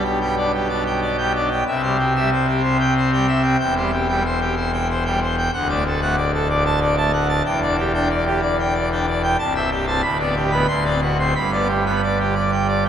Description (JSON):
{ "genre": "classical, organ toccata", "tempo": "93 BPM", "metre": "3/4", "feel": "straight", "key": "G major", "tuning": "A4 = 440 Hz", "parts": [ { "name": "pipe organ, full organ", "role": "solo", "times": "0.0-12.9 s", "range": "C1 to C6", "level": "-17 LUFS", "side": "equal", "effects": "none" } ], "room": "wet cathedral reverb, RT60 5.4 s", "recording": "none", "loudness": "-17 LUFS", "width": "side -9 dB against mid", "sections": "0.0-12.9 A section", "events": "none", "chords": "0.0 G/B; 1.7 C; 3.6 C/E; 5.5 D; 7.4 Em7; 9.4 Am7/C; 10.0 G/D; 10.7 D7; 11.4 G" }